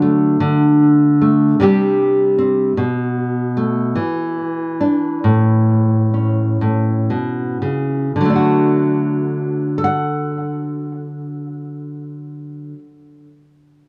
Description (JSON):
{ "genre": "folk, solo fingerstyle acoustic guitar", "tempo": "36-51 BPM (dotted quarters)", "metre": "6/8", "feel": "straight", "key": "D major", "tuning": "A4 = 440 Hz", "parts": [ { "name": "nylon-string guitar", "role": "solo", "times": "0.0-12.9 s", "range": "A2 to F#5", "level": "-17 LUFS", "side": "equal", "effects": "analog delay" } ], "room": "wet studio ambience, RT60 0.5 s", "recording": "worn, warbling old tape, cassette tape, warbly pitch drift", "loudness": "-17 LUFS", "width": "mono", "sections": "0.0-8.1 A section; 8.1-11.4 B section", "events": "slowing down 2.8-8.1", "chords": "0.4 D5; 1.6 Csus2; 2.8 Asus2/B; 4.0 Dsus2/E; 5.2 Aadd9; 8.1 D" }